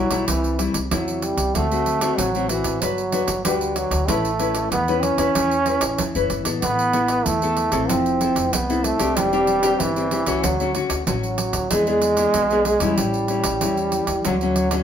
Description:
samba and choro; 94 BPM; 4/4; straight; A4 = 440 Hz
warm trombone; second line; 0.0-14.8 s; E3 to C#4; -22 LUFS; right 2 dB
nylon-string guitar; accompaniment; 0.0-14.8 s; A2 to B4; -23 LUFS; left 4 dB
upright bass; bass; 0.0-14.8 s; E1 to E2; -28 LUFS; equal
pandeiro; percussion; 0.1-14.8 s; -26 LUFS; right 5 dB
wet studio reverb, RT60 0.7 s; band playing live in one room; -18 LUFS; side -8 dB against mid
0.0-14.8 A section
0.3 Am7/C; 1.5 D7; 2.8 Gmaj7; 4.1 Aadd9; 6.6 Asus2; 7.9 Fmaj7; 9.2 Cadd9/E; 10.4 Dmaj7; 11.7 E7; 13.0 A7; 14.3 Dmaj7

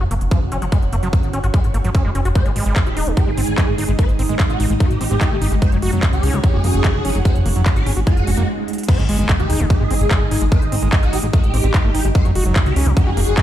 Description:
psychedelic trance; 147 BPM; 4/4; straight; A4 = 440 Hz
overdriven acid bass; riff; 0.0-13.4 s; F3 to Gb4; -26 LUFS; equal; distortion, auto-pan, sidechain pumping, ping-pong delay
plucky analog bass; bass; 0.0-13.3 s; Eb1 to Db2; -18 LUFS; equal
airy breathy pad; texture; 0.0-13.4 s; Ab3 to Ab5; -29 LUFS; equal; chorus, phaser, sidechain pumping
big-room dance drum kit; drums; 0.1-13.4 s; crash cymbal, handclaps, hi-hat; -26 LUFS; equal
electronic kick drum; drums; 0.3-13.4 s; -16 LUFS; equal
swarming rave lead; melody; 2.4-13.4 s; Gb4 to Db5; -26 LUFS; equal; chorus, phaser, sidechain pumping, dub echo
pulsing gated texture; sustained chords; 2.8-13.4 s; Ab3 to Eb4; -27 LUFS; right 2 dB; chorus, built-in reverb, sidechain pumping
swell and impact; sound effects; 8.2-10.5 s; -25 LUFS; right 1 dB
little or no reverb; played on a big sound system in a bare room, large studio reverb; -14 LUFS; side -12 dB against mid
0.0-8.9 A section; 8.9-13.4 B section
fade-in on analog synth pad 0.0-8.9; swell 8.2-8.9; stop 8.5-8.9; drum fill 8.7; drop 8.9-13.4; impact 8.9-10.5
0.0 Gb5; 2.4 Ab5; 5.6 Gb5; 8.9 Ab5; 12.2 Gb5

